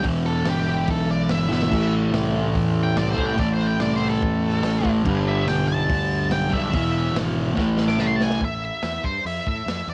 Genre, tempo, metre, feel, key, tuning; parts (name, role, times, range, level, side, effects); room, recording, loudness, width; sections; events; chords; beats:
garage rock duo or trio; 143 BPM; 4/4; straight; A minor; A4 = 441 Hz
octave-fuzz lead guitar; melody; 0.0-9.9 s; G4 to D6; -30 LUFS; equal; distortion, cassette tape
fuzz guitar; riff; 0.0-8.4 s; E2 to A3; -23 LUFS; equal; distortion, cassette tape
fuzz picked electric bass; bass; 0.0-9.9 s; E1 to A2; -32 LUFS; equal; overdrive
crunchy breakbeat drum kit; drums; 0.0-9.8 s; crash cymbal, hi-hat, kick drum, snare drum; -32 LUFS; equal; cassette tape
small room reverb; home recording on cassette; -22 LUFS; mono
0.0-8.4 A section; 8.4-9.9 B section
lead electric guitar solo 0.0-8.4; drum fill 1.5, 7.6-8.4
0.0 Em; 1.7 Am; 5.1 G; 6.7 E5; 7.6 Am; 8.4 A5
| 0.03 0.45 0.87 1.29 | 1.71 2.12 2.54 2.96 | 3.38 3.80 4.22 4.63 | 5.05 5.47 5.89 6.31 | 6.72 7.14 7.56 7.98 | 8.40 8.82 9.24 9.66